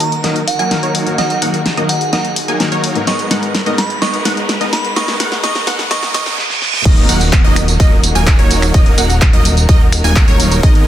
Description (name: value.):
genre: EDM, festival progressive house.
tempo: 127 BPM.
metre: 4/4.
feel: straight.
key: unclear.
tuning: A4 = 437 Hz.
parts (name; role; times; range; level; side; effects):
glassy synth bell; melody; 0.0-6.3 s; F#5 to C#6; -22 LUFS; right 3 dB; chorus, dub echo.
dark baby grand piano; accompaniment; 0.0-6.4 s; G#2 to A#4; -23 LUFS; left 5 dB; sidechain pumping.
dark symphonic string section; sustained chords; 0.0-10.9 s; D#3 to B4; -25 LUFS; equal; sidechain pumping.
fat analog bass; bass; 0.0-10.8 s; D#1 to G#1; -19 LUFS; equal; sidechain pumping, high-pass filter.
big-room dance drum kit; drums; 0.0-10.8 s; crash cymbal, finger snaps, handclaps, hi-hat, snare drum, tambourine; -18 LUFS; equal; none.
riser, reverse cymbal and downlifter; sound effects; 0.1-10.6 s; none; -24 LUFS; right 2 dB; none.
wide unison pluck; arpeggios; 0.2-10.8 s; C#5 to G#5; -23 LUFS; right 1 dB; phaser, sidechain pumping, dub echo.
supersaw chords; riff; 0.2-10.8 s; F#3 to G#5; -20 LUFS; right 1 dB; sidechain pumping, low-pass filter, dub echo.
electronic kick drum; drums; 6.9-10.7 s; none; -10 LUFS; equal; none.
room: digital ambience.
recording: dense, heavily limited modern master, high-pass filter.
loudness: -11 LUFS.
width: side -12 dB against mid.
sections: 0.0-6.9 A section; 6.9-10.9 B section.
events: build-up 0.0-6.9; drum fill 0.0-6.4, 6.4-6.9; filter sweep on supersaw synth 0.0-6.9; filter sweep on synth pluck 0.0-6.9; filter sweep 0.0-6.9; riser 0.1-6.4; reverse cymbal 5.9-6.9; drop 6.9-10.9.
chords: 0.0 D#m; 3.1 G#madd9; 6.9 D#m.